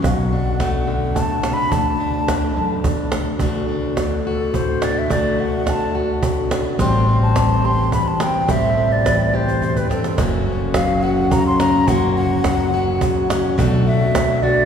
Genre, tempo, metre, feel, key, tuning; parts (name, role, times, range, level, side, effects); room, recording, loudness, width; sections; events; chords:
acoustic folk duo or small band; 106 BPM; 3/4; straight; D mixolydian; A4 = 441 Hz
wooden flute; melody; 0.0-14.7 s; A4 to C6; -22 LUFS; equal
fingerpicked plugged-in steel-string acoustic guitar; accompaniment; 0.0-14.7 s; D2 to G4; -21 LUFS; left 2 dB
upright bass; bass; 0.0-14.7 s; F#1 to A2; -23 LUFS; equal
cajon; percussion; 0.0-14.3 s; -22 LUFS; right 2 dB
wet cathedral reverb, RT60 4.6 s; recorded in a church or concert hall, small room ambience; -16 LUFS; side -8 dB against mid
0.0-3.4 A section; 3.4-14.7 B section
flute solo 3.4-14.7; drum fill 9.5-10.2
0.0 Bm7; 1.7 Dsus2; 3.4 D; 6.8 Am7; 10.2 F#; 13.6 Bm7